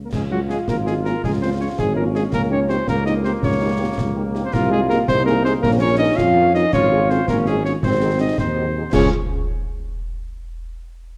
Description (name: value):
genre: military-style march for wind band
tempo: 109 BPM (dotted quarters)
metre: 6/8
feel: straight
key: Db major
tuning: A4 = 441 Hz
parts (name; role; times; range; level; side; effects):
- warm cornet; melody; 0.0-9.1 s; Gb4 to F5; -26 LUFS; equal; none
- mellow euphonium; second line; 0.0-9.1 s; Db3 to F4; -26 LUFS; equal; none
- mellow tuba; bass; 0.0-9.1 s; Ab1 to F2; -24 LUFS; equal; none
- clear trombone section; sustained chords; 0.1-9.1 s; F3 to F4; -29 LUFS; equal; none
- concert snare drum, clash cymbals and concert bass drum; drums; 0.1-9.1 s; none; -29 LUFS; equal; none
- dark French horn section; accompaniment; 0.3-9.1 s; Ab3 to Bb4; -30 LUFS; equal; none
room: moderate recital hall reverb, RT60 1.6 s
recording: dark, warm production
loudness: -19 LUFS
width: mono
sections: 0.1-8.9 A section; 8.9-10.0 B section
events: none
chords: 0.1 Db; 2.3 Eb7/Db; 4.5 Ab/C; 5.6 Bbm; 6.7 Db/Ab; 7.8 Ab7; 8.9 Db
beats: | 0.13 0.68 | 1.23 1.78 | 2.33 2.88 | 3.44 3.98 | 4.54 5.08 | 5.63 6.18 | 6.74 7.29 | 7.83 8.38 | 8.94